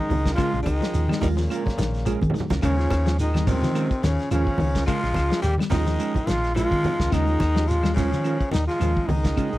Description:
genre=afrobeat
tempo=107 BPM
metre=4/4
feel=swing 55% on 16ths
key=Eb mixolydian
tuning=A4 = 440 Hz
part: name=bright trombone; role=melody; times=0.0-9.6 s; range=Bb3 to G4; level=-27 LUFS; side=equal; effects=none
part: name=raspy baritone saxophone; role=second line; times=0.0-9.6 s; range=Bb2 to G3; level=-34 LUFS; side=left 6 dB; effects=none
part: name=raspy tenor saxophone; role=second line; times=0.0-9.6 s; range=Db3 to Bb3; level=-35 LUFS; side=right 2 dB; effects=none
part: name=overdriven reed electric piano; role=accompaniment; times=0.0-9.6 s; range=Ab3 to Ab4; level=-34 LUFS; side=right 7 dB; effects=fast tremolo
part: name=electric guitar at the edge of break-up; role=arpeggios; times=0.0-9.6 s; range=Db3 to G3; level=-32 LUFS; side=left 7 dB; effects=none
part: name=mellow electric guitar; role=stabs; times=0.1-9.6 s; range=Ab3 to Bb4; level=-30 LUFS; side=right 7 dB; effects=none
part: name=hollow-body short-scale fingered electric bass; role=bass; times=0.1-9.6 s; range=Bb1 to Eb3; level=-24 LUFS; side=equal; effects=none
part: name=warm soul drum kit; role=drums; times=0.1-9.6 s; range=hi-hat, kick drum, snare drum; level=-27 LUFS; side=equal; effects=none
part: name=congas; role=percussion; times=0.1-9.5 s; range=none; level=-28 LUFS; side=right 1 dB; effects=none
part: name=shekere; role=percussion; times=0.1-9.5 s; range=none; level=-32 LUFS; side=right 1 dB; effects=none
part: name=claves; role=percussion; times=0.4-9.5 s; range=none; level=-43 LUFS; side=equal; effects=none
room=little or no reverb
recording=dry, close 1970s-style studio recording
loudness=-20 LUFS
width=side -16 dB against mid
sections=0.0-9.6 A section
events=drum fill 2.2-2.6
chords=0.0 Eb9sus4

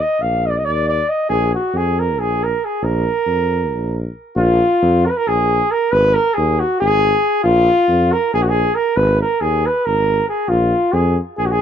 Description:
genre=balkan folk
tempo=274 BPM (eighths)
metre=7/8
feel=straight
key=Bb phrygian dominant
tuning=A4 = 440 Hz
part: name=mellow flugelhorn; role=melody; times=0.0-11.6 s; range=F4 to F5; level=-16 LUFS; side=equal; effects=none
part: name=warm tuba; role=bass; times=0.2-11.6 s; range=Ab1 to F2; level=-19 LUFS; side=equal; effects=none
room=studio ambience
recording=dry, close 1970s-style studio recording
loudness=-14 LUFS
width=side -9 dB against mid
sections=0.0-4.4 A section; 4.4-11.6 B section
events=none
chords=0.0 Eb5; 1.3 Bb5; 5.9 Ab5; 7.4 Bb5; 9.0 Ab5; 10.5 Bb5

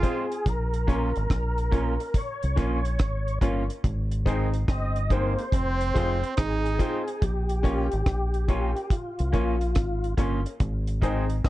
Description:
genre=roots reggae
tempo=71 BPM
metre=4/4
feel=swing 65% on 16ths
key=unclear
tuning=A4 = 440 Hz
part: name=tonewheel organ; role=melody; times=0.0-11.5 s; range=F4 to Eb5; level=-32 LUFS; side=left 1 dB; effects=overdrive, chorus vibrato, slow rotary speaker, plate reverb, tape echo
part: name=brilliant trombone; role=second line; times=0.0-11.5 s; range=Bb3 to F4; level=-32 LUFS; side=right 4 dB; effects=tape echo
part: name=electric guitar through a small old amp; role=accompaniment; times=0.0-11.2 s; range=Eb3 to F4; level=-33 LUFS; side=right 5 dB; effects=plate reverb
part: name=warm upright piano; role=stabs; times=0.0-11.2 s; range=C4 to Db5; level=-32 LUFS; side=left 6 dB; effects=plate reverb
part: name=deep reggae drum kit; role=drums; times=0.0-11.5 s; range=hi-hat, kick drum, rim click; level=-26 LUFS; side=equal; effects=vintage 12-bit sampler grit
part: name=deep dub fingered electric bass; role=bass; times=0.5-11.5 s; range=F1 to C2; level=-27 LUFS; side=equal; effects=none
room=light reverb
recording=cassette tape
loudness=-23 LUFS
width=side -16 dB against mid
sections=0.0-11.5 A section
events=none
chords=0.5 Bbm; 3.8 Ab; 5.5 Fm; 7.2 Bbm; 10.6 Ab

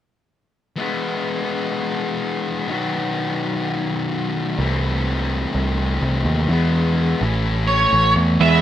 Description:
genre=rock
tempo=126 BPM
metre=4/4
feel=straight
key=E major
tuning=A4 = 441 Hz
part: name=thick fuzz guitar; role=riff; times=0.8-8.6 s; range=A2 to F#4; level=-22 LUFS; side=left 2 dB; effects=distortion
part: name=overdriven picked electric bass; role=bass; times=4.6-8.6 s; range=A1 to E2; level=-19 LUFS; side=right 1 dB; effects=none
part: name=octave-fuzz lead guitar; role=melody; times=7.7-8.6 s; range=C#5 to E5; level=-16 LUFS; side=right 1 dB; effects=distortion
part: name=twelve-string electric guitar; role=riff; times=8.4-8.6 s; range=E3 to E4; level=-17 LUFS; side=right 10 dB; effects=analog chorus
room=moderate studio reverb, RT60 0.6 s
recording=rough home demo mix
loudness=-18 LUFS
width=side -11 dB against mid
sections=0.8-8.4 A section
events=none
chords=0.8 E; 2.7 B; 4.6 Am/C; 6.5 E; 7.2 A

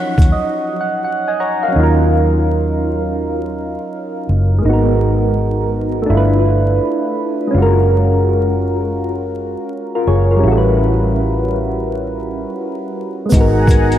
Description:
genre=lo-fi hip hop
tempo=83 BPM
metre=4/4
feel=swing 64% on 16ths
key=Eb minor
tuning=A4 = 440 Hz
part: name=soft electric-piano-like synth keys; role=accompaniment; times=0.0-14.0 s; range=F3 to Bb5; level=-16 LUFS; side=equal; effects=chorus, phaser, cassette tape, low-pass filter
part: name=vintage muted fingered electric bass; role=bass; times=0.2-14.0 s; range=Gb1 to Eb2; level=-16 LUFS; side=equal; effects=none
part: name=boom bap sampler-style drum kit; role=drums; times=0.2-0.3, 13.3-14.0 s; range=hi-hat, kick drum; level=-13 LUFS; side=equal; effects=none
part: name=egg shaker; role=percussion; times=0.2-0.3, 13.3-13.9 s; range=none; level=-37 LUFS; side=right 4 dB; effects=none
part: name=lush unison pad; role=sustained chords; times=13.3-14.0 s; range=Ab4 to Bb5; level=-21 LUFS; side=right 2 dB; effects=chorus, low-pass filter
room=moderate lush hall reverb, RT60 2.5 s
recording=dreamy mix soaked in reverb, vinyl crackle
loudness=-13 LUFS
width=side -11 dB against mid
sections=0.0-1.8 A section; 1.8-14.0 B section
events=synth keys fill 0.0-1.8; break 0.3-1.8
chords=0.0 Ebm9; 4.7 Abm7; 6.1 G13; 7.5 Gbmaj7; 10.4 A13; 13.3 Abm9

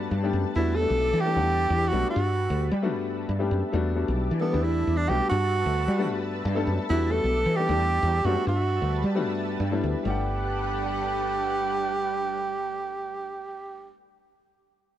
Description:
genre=jazz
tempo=266 BPM (eighths)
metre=7/8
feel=straight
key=G major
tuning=A4 = 441 Hz
part: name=warm grand piano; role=accompaniment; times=0.0-13.9 s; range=G3 to G5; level=-30 LUFS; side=left 4 dB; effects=none
part: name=analog string pad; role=sustained chords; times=0.0-13.9 s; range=G3 to A5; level=-35 LUFS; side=left 1 dB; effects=ensemble chorus
part: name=woody fretless electric bass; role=bass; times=0.0-13.9 s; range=G1 to G3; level=-27 LUFS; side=equal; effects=lush chorus
part: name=breathy tenor saxophone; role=melody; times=0.6-13.9 s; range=B3 to A4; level=-27 LUFS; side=right 3 dB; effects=slapback echo
room=studio ambience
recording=dry, close 1970s-style studio recording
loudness=-23 LUFS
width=side -11 dB against mid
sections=0.0-10.1 A section; 10.1-13.2 B section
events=grand piano fill 9.4-10.1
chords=0.0 Gmaj9; 0.6 Em11; 2.2 Gmaj9; 3.7 Em11; 5.3 Gmaj9; 6.9 Em11; 8.5 Gmaj9

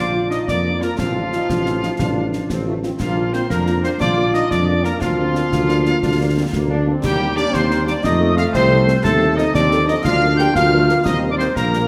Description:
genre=military-style march for wind band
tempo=119 BPM (dotted quarters)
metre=6/8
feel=straight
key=Bb major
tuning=A4 = 440 Hz
part: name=dark trumpet section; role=melody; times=0.0-11.9 s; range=F4 to G5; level=-27 LUFS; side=equal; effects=none
part: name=bright piccolo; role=second line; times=0.0-11.9 s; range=F5 to G6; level=-28 LUFS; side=equal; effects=none
part: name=clear euphonium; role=second line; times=0.0-11.9 s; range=F3 to G4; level=-27 LUFS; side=equal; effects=none
part: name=warm woodwind section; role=second line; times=0.0-11.9 s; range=F4 to G5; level=-27 LUFS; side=equal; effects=none
part: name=clear trombone section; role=sustained chords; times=0.0-11.9 s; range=A3 to F4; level=-28 LUFS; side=equal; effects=none
part: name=dark tuba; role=bass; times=0.0-11.9 s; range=A1 to F2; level=-22 LUFS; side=equal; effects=none
part: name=mellow French horn section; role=accompaniment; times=0.1-11.8 s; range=F3 to Bb4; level=-30 LUFS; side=equal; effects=none
part: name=concert snare drum, concert bass drum and clash cymbals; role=drums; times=0.3-11.9 s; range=none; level=-28 LUFS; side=equal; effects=none
room=wet scoring stage reverb, RT60 1.6 s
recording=none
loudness=-18 LUFS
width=mono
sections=0.0-11.9 A section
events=none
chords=0.0 Bb; 1.0 F7/A; 3.0 Bb; 5.0 Bb/D; 7.0 Cm/Eb; 8.0 F; 9.0 F7/Eb; 10.1 Bb/D; 11.1 Eb

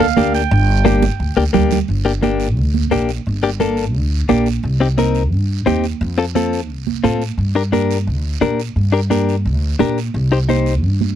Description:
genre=latin, cumbia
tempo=174 BPM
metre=4/4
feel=straight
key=G minor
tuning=A4 = 441 Hz
part: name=growling clarinet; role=second line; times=0.0-1.5 s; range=F5 to G5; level=-20 LUFS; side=right 15 dB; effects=none
part: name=direct-recorded clean electric guitar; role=accompaniment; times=0.0-10.7 s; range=Bb3 to C5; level=-17 LUFS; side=left 6 dB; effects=none
part: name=upright bass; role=bass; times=0.0-11.1 s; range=G1 to Bb2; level=-18 LUFS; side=equal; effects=none
part: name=congas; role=percussion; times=0.0-11.2 s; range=none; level=-21 LUFS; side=right 14 dB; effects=none
part: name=guiro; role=percussion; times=0.2-11.2 s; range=none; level=-34 LUFS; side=right 18 dB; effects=none
room=little or no reverb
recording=dry, close 1970s-style studio recording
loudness=-14 LUFS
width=side -10 dB against mid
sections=0.0-1.9 A section; 1.9-11.2 B section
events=clarinet solo 0.0-1.9; drum fill 0.9-1.9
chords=0.0 Gm; 4.6 Cm; 6.0 F; 7.4 Gm; 10.1 Cm

